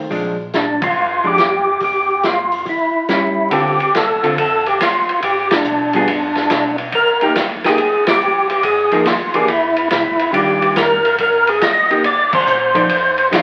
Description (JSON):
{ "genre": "soul jazz organ trio", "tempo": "141 BPM", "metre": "4/4", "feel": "swing 67% on 8ths", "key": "unclear", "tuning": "A4 = 442 Hz", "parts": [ { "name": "archtop guitar, miked and amplified", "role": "accompaniment", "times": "0.0-13.4 s", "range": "D3 to D5", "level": "-22 LUFS", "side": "equal", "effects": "none" }, { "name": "mellow tonewheel organ", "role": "bass", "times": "0.0-13.4 s", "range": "C2 to B2", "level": "-42 LUFS", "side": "equal", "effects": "chorus vibrato, slow rotary speaker" }, { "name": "vintage drum kit", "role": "drums", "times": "0.1-13.4 s", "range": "crash cymbal, hi-hat, kick drum, ride cymbal, snare drum", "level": "-22 LUFS", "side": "equal", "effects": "none" }, { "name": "percussive tonewheel organ", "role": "melody", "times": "0.6-13.4 s", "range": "D4 to Eb5", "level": "-17 LUFS", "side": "equal", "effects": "slow rotary speaker, overdrive, chorus vibrato" } ], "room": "wet large studio reverb, RT60 0.9 s", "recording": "very old 78 rpm record, vinyl crackle", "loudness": "-15 LUFS", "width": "mono", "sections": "0.0-3.5 A section; 3.5-13.4 B section", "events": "band accent 0.7, 5.4, 8.0, 12.3", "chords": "0.1 Bb7; 1.8 Em; 2.7 C#dim; 3.5 Dm7; 5.2 G; 6.9 Cm7; 8.6 Fm7; 9.5 E; 10.3 Ebmaj9; 12.0 Cm7; 12.9 F6" }